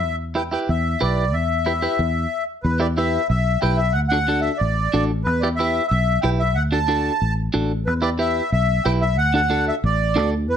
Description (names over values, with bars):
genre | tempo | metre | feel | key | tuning
latin | 183 BPM | 4/4 | straight | E minor | A4 = 440 Hz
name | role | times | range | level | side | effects
accordion | melody | 0.0-10.6 s | B4 to A5 | -22 LUFS | equal | light tremolo tuning, slapback echo
fingered electric bass | bass | 0.0-10.6 s | A1 to E2 | -22 LUFS | left 1 dB | none
clean electric guitar | accompaniment | 0.4-10.3 s | D4 to B4 | -24 LUFS | right 2 dB | none
room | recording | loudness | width
light reverb | none | -18 LUFS | side -9 dB against mid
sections
0.0-2.6 A section; 2.6-10.6 B section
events
stop 2.3-2.6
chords
0.0 Em; 4.0 D; 5.3 Em; 6.6 D; 7.9 Em; 9.2 D